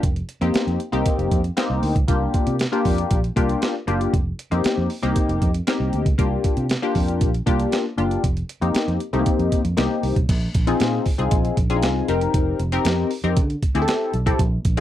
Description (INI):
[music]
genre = early-eighties boogie funk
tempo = 117 BPM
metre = 4/4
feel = straight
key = unclear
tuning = A4 = 440 Hz
[part]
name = funky polysynth comp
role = accompaniment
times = 0.0-14.8 s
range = A3 to Bb4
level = -22 LUFS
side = left 3 dB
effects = chorus
[part]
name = vintage muted fingered electric bass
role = bass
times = 0.0-14.8 s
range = F1 to D3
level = -23 LUFS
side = right 1 dB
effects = none
[part]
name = boom bap sampler-style drum kit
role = drums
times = 0.0-14.8 s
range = crash cymbal, hi-hat, kick drum, snare drum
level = -22 LUFS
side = right 1 dB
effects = none
[sound]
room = little or no reverb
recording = dry, close 1970s-style studio recording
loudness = -18 LUFS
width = side -12 dB against mid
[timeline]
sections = 0.0-10.3 A section; 10.3-14.8 B section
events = none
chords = 0.0 F9sus4; 2.1 C9sus4; 4.1 F9sus4; 6.2 C9sus4; 8.2 F9sus4; 10.3 Bb9sus4; 12.1 F9sus4; 13.4 D9sus4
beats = | 0.03 0.55 1.06 1.57 | 2.08 2.60 3.11 3.62 | 4.14 4.65 5.16 5.67 | 6.19 6.70 7.21 7.73 | 8.24 8.75 9.26 9.78 | 10.29 10.80 11.32 11.83 | 12.34 12.85 13.37 13.88 | 14.39